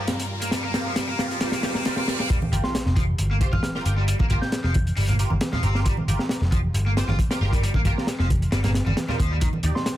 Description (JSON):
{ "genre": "breakbeat, breaks", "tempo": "135 BPM", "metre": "4/4", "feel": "swing 53% on 16ths", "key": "G minor pentatonic", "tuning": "A4 = 440 Hz", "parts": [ { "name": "warm studio string section", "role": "sustained chords", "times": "0.0-2.3 s", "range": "G2 to Bb4", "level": "-34 LUFS", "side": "left 1 dB", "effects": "sidechain pumping" }, { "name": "cranked stack guitar", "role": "riff", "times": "0.0-9.5 s", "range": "Eb3 to F4", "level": "-31 LUFS", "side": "equal", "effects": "overdrive, digital delay" }, { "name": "band-passed chord stab", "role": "stabs", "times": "0.0-10.0 s", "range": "Eb4 to D5", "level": "-33 LUFS", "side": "right 3 dB", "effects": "phaser, ensemble chorus, digital delay" }, { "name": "riser, reverse cymbal and sub drop", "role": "sound effects", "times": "0.0-4.1 s", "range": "none", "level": "-34 LUFS", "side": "equal", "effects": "none" }, { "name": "crunchy breakbeat drum kit", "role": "drums", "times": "0.1-10.0 s", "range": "hi-hat, kick drum, snare drum", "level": "-24 LUFS", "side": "equal", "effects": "none" }, { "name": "congas", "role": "percussion", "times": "2.4-9.6 s", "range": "none", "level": "-30 LUFS", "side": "right 2 dB", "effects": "none" }, { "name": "picked electric bass", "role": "bass", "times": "2.5-9.7 s", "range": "F1 to Eb2", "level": "-22 LUFS", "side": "equal", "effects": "none" }, { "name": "soft synth bell", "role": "melody", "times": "2.6-4.7, 9.8-9.9 s", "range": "C6 to G6", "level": "-35 LUFS", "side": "right 1 dB", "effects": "chorus, AM radio sound, digital delay" } ], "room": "little or no reverb", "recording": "dense, heavily limited modern master", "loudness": "-20 LUFS", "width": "side -13 dB against mid", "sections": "0.0-2.3 A section; 2.3-10.0 B section", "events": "build-up 0.0-2.3; drum fill 0.0-2.3; riser 0.0-2.3; reverse cymbal 1.4-2.3; drop 2.3-10.0; impact 2.3-4.1", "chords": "0.0 Gm7; 9.4 Ebmaj7", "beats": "0.08 | 0.52 0.97 1.41 1.86 | 2.30 2.75 3.19 3.63 | 4.08 4.52 4.97 5.41 | 5.86 6.30 6.75 7.19 | 7.63 8.08 8.52 8.97 | 9.41 9.86" }